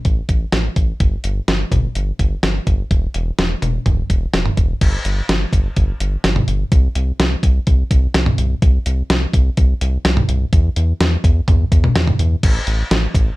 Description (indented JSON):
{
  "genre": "synth-pop",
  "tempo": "126 BPM",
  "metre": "4/4",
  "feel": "straight",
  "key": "unclear",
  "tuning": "A4 = 439 Hz",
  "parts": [
    { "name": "clean 12-bit digital drum machine", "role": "drums", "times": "0.0-13.3 s", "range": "crash cymbal, hi-hat, kick drum, snare drum, toms", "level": "-16 LUFS", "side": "equal", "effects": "none" },
    { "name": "round analog bass", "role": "bass", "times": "0.1-13.3 s", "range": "E1 to E2", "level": "-18 LUFS", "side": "equal", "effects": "none" }
  ],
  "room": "light reverb",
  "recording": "none",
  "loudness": "-14 LUFS",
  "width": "side -20 dB against mid",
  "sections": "0.0-4.8 A section; 4.8-12.4 B section",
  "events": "none",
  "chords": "none"
}